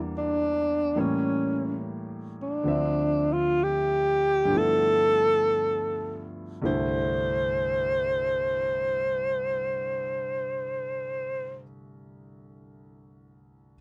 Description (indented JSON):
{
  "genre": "jazz ballad",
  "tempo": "52-76 BPM",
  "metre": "4/4",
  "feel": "swing 68% on 8ths",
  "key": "C major",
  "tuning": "A4 = 441 Hz",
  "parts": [
    { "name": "warm concert grand piano", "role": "accompaniment", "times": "0.0-13.8 s", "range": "C2 to E5", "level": "-34 LUFS", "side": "equal", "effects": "none" },
    { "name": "breathy alto saxophone", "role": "melody", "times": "0.2-11.6 s", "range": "C#4 to C5", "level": "-27 LUFS", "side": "equal", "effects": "none" }
  ],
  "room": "light reverb",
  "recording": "dry, close 1970s-style studio recording",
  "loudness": "-26 LUFS",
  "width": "mono",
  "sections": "0.0-2.7 A section; 2.7-6.6 B section; 6.6-11.2 C section",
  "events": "slowing down 0.0-6.6",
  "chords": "0.0 Em7b5; 0.9 A7b9; 2.7 Dm7; 4.5 G13; 6.6 C69",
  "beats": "0.14 0.95 1.79 | 2.66 3.56 4.51 5.53 | 6.63 7.79 8.94 10.09"
}